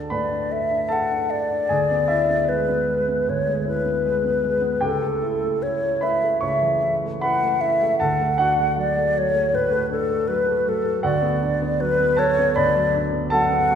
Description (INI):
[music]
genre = classical, romantic duo for flute and grand piano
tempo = 77 BPM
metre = 4/4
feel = rubato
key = D major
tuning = A4 = 444 Hz
[part]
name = warm grand piano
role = accompaniment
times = 0.0-13.8 s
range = C#2 to C#6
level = -24 LUFS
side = right 1 dB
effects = none
[part]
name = mellow hollow silver concert flute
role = melody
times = 0.1-13.8 s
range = A4 to F#5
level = -20 LUFS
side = left 1 dB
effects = none
[sound]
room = wet scoring stage reverb, RT60 1.6 s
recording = heard from further back in the room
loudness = -19 LUFS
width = side -8 dB against mid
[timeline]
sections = 0.0-13.8 A section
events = none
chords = 0.0 D; 1.7 E7/D; 4.8 A7/C#; 8.0 D; 11.0 Bm/D